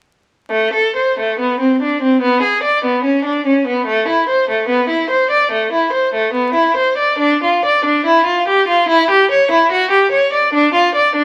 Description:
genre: classical, baroque-style suite movement for unaccompanied violin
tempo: 73 BPM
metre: 4/4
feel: rubato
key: A minor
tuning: A4 = 440 Hz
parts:
  - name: rich violin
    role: solo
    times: 0.5-11.2 s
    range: A3 to D5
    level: -14 LUFS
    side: equal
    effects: none
room: moderate stone room reverb, RT60 1.0 s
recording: vinyl crackle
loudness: -14 LUFS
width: mono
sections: 0.5-11.2 A section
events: none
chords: none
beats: | 0.49 1.39 2.22 3.04 | 3.88 4.70 5.53 6.35 | 7.22 8.07 8.89 9.71 | 10.52

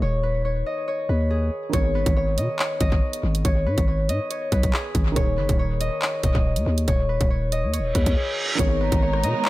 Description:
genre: hip hop, drill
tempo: 140 BPM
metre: 4/4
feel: half-time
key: G# minor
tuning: A4 = 440 Hz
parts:
  - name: Celtic harp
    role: melody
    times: 0.0-9.5 s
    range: G#4 to D#5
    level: -26 LUFS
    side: left 2 dB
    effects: tape echo
  - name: felt-muted upright piano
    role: accompaniment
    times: 0.0-9.5 s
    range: D#3 to A#4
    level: -34 LUFS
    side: right 6 dB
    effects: none
  - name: growling 808-style bass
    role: bass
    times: 0.0-9.3 s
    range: D#1 to B2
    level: -23 LUFS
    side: equal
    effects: none
  - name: drill drum kit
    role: drums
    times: 1.7-9.5 s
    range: handclaps, hi-hat, kick drum, rim click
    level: -23 LUFS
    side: equal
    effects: none
  - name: reverse cymbal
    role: sound effects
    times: 7.9-8.6 s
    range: none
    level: -28 LUFS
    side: right 3 dB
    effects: none
  - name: warm symphonic string section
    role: sustained chords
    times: 8.6-9.5 s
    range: G#3 to A#4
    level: -30 LUFS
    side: right 3 dB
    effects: none
  - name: warm velvety synth lead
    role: second line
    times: 8.8-9.5 s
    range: A#5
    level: -28 LUFS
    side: equal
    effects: chorus, tape echo
room: small room ambience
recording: echo-heavy mix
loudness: -20 LUFS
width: side -17 dB against mid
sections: 0.0-8.6 A section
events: reverse cymbal 7.9-8.6; drums muted 8.2-8.6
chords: 0.0 D#sus4; 1.7 G#madd9; 5.2 D#sus4; 8.6 G#madd9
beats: | 0.02 0.45 0.88 1.31 | 1.74 2.16 2.59 3.02 | 3.45 3.88 4.31 4.74 | 5.16 5.59 6.02 6.45 | 6.88 7.31 7.74 8.16 | 8.59 9.02 9.45

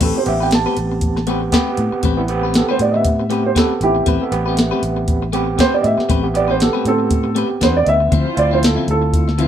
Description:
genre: straight-eighth soul blues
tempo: 118 BPM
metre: 4/4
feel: swing 55% on 16ths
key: A minor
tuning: A4 = 441 Hz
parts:
  - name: dark upright piano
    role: second line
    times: 0.0-9.4 s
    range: C4 to A5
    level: -19 LUFS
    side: right 2 dB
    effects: none
  - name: clean electric guitar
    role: stabs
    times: 0.0-9.5 s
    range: D3 to B4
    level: -23 LUFS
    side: left 8 dB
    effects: none
  - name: fingered electric bass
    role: bass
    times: 0.0-9.5 s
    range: A1 to A2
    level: -20 LUFS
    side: equal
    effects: none
  - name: soft vintage rhythm box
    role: drums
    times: 0.0-9.5 s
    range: crash cymbal, hi-hat, kick drum, snare drum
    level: -18 LUFS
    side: equal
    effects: none
  - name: overdriven tine electric piano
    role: accompaniment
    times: 0.1-9.5 s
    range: B3 to A4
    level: -22 LUFS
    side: right 4 dB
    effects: medium tremolo
  - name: muted studio string section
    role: sustained chords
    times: 8.1-9.5 s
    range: E4 to C5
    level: -29 LUFS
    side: left 3 dB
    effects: none
room: light reverb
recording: band playing live in one room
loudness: -14 LUFS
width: side -10 dB against mid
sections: 0.0-9.5 A section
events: upright piano solo 0.0-9.5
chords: 0.0 Am9; 8.1 Dm9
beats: | 0.01 0.52 1.03 1.54 | 2.04 2.55 3.06 3.56 | 4.07 4.58 5.08 5.59 | 6.10 6.61 7.11 7.62 | 8.12 8.63 9.14

